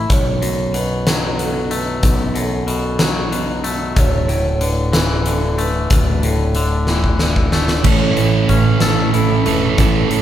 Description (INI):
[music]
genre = post-rock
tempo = 62 BPM (dotted quarters)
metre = 6/8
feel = straight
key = unclear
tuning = A4 = 439 Hz
[part]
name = twangy electric guitar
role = arpeggios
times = 0.0-10.2 s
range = B1 to A4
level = -21 LUFS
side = left 3 dB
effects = none
[part]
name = growling fingered electric bass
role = bass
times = 0.0-10.2 s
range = D1 to B1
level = -20 LUFS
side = equal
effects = overdrive
[part]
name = vibraphone with medium mallets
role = arpeggios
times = 0.1-10.2 s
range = A4 to C#5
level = -25 LUFS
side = right 2 dB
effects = none
[part]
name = huge arena drum kit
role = drums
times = 0.1-10.2 s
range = crash cymbal, hi-hat, kick drum, snare drum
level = -18 LUFS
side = equal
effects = none
[part]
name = sludgy distorted guitar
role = riff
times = 7.8-10.2 s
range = A2 to A4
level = -15 LUFS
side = right 5 dB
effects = overdrive
[sound]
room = moderate large studio reverb, RT60 1.4 s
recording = band playing live in one room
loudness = -14 LUFS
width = side -11 dB against mid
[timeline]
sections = 0.0-7.8 A section; 7.8-10.2 B section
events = drum fill 6.9-7.8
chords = 0.1 B5; 4.0 Dsus2; 7.8 Aadd9